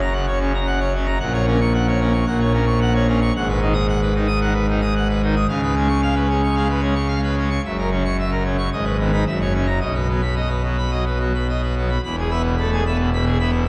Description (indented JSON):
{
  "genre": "classical, organ toccata",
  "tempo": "112 BPM",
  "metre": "4/4",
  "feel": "straight",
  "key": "B major",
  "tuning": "A4 = 440 Hz",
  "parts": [
    { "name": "pipe organ, full organ", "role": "solo", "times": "0.0-13.7 s", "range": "E1 to D#6", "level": "-20 LUFS", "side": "equal", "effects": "none" }
  ],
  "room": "wet church reverb, RT60 3.5 s",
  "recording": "dark, warm production",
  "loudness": "-20 LUFS",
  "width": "mono",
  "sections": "0.0-12.0 A section; 12.0-13.7 B section",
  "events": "none",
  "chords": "0.0 F#; 1.2 F#/A#; 3.4 G#m7; 5.5 C#7; 7.6 F#7; 8.7 G#m; 9.3 F#7; 9.8 B; 12.0 E"
}